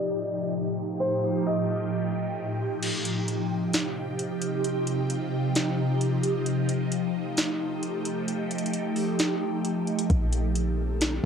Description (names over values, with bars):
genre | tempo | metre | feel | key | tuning
hip hop, atmospheric cloud-rap | 132 BPM | 4/4 | half-time | unclear | A4 = 443 Hz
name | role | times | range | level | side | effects
felt-muted upright piano | melody | 0.0-2.8 s | C5 to Eb5 | -30 LUFS | equal | analog delay
ethereal airy pad | sustained chords | 0.0-11.3 s | A2 to A4 | -26 LUFS | equal | ensemble chorus, built-in reverb, phaser, sidechain pumping, cassette tape
smooth R&B drum kit | drums | 2.8-11.1 s | crash cymbal, hi-hat, kick drum, snare drum | -28 LUFS | equal | none
clean 808-style bass | bass | 10.1-11.2 s | Bb1 | -26 LUFS | equal | none
room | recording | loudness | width
wet booth ambience, RT60 0.2 s | home recording on cassette, low-pass filter | -25 LUFS | side -7 dB against mid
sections
0.0-2.8 A section; 2.8-11.3 B section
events
filter sweep 0.0-2.8; kick muted 2.8-10.1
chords
0.0 F9; 2.8 Eb69; 6.5 F9; 10.1 Bbmaj9